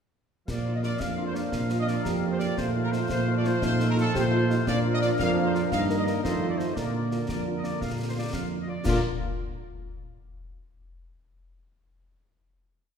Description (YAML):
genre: military-style march for wind band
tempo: 115 BPM (dotted quarters)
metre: 6/8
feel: straight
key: Bb major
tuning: A4 = 440 Hz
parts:
  - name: warm trumpet section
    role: melody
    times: 0.5-9.0 s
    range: A4 to F5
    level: -33 LUFS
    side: equal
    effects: none
  - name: warm woodwind section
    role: second line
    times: 0.5-9.0 s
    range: A4 to F5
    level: -36 LUFS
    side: left 4 dB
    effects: none
  - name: warm trombone section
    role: sustained chords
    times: 0.5-9.0 s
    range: D3 to Bb3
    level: -33 LUFS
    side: right 1 dB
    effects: none
  - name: mellow tuba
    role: bass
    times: 0.5-9.0 s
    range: F2 to Bb2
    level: -28 LUFS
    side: right 2 dB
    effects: none
  - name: concert snare drum, clash cymbals and concert bass drum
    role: drums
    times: 0.5-9.0 s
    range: none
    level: -36 LUFS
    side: left 2 dB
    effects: none
  - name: clear French horn section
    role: accompaniment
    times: 0.7-9.0 s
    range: A3 to Bb4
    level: -36 LUFS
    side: left 3 dB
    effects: none
  - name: clear euphonium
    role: second line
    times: 1.0-8.6 s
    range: D4 to G4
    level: -33 LUFS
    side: right 2 dB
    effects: none
room: wet scoring stage reverb, RT60 2.0 s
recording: minimal, uncompressed stereo recording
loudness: -24 LUFS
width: side -7 dB against mid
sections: 0.5-8.9 A section; 8.9-9.9 final chord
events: none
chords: 0.5 Bb; 2.6 F7/Bb; 4.7 Bb; 5.7 Eb/G; 6.2 F7; 6.8 Bb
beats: | 0.48 1.00 | 1.53 2.05 | 2.57 3.10 | 3.62 4.14 | 4.67 5.19 | 5.71 6.24 | 6.76 7.28 | 7.81 8.33 | 8.85